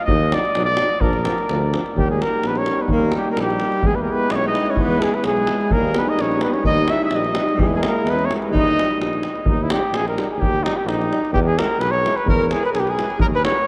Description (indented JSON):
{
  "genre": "balkan folk, Balkan brass band",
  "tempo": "128 BPM",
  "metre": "2/4",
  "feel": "straight",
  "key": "Eb phrygian dominant",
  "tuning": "A4 = 436 Hz",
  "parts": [
    { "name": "mellow cornet", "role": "melody", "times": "0.0-13.7 s", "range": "Eb4 to Fb5", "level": "-23 LUFS", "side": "equal", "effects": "none" },
    { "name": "mellow trombone", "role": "accompaniment", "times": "0.1-13.5 s", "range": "D4 to E4", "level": "-32 LUFS", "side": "equal", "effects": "none" },
    { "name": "warm euphonium", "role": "accompaniment", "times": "0.1-13.5 s", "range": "F3 to G#3", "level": "-31 LUFS", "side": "equal", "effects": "none" },
    { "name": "mellow tuba", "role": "bass", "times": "0.1-13.5 s", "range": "Bb1 to E2", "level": "-26 LUFS", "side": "equal", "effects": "none" },
    { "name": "davul", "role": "percussion", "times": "0.1-13.6 s", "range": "none", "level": "-26 LUFS", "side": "equal", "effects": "none" },
    { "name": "mellow alto saxophone", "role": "second line", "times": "2.0-9.0, 12.3-13.7 s", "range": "G3 to Db5", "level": "-28 LUFS", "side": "equal", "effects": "none" }
  ],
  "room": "wet cathedral reverb, RT60 5.1 s",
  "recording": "in a vast, echoing space",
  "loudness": "-19 LUFS",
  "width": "mono",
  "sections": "0.0-2.0 A section; 2.0-9.5 B section; 9.5-13.7 B section",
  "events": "cornet solo 0.0-2.0",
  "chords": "0.1 Ebm; 1.0 Bb; 2.0 Eb; 3.8 E; 5.7 Eb; 7.6 E; 8.5 Eb; 11.3 E"
}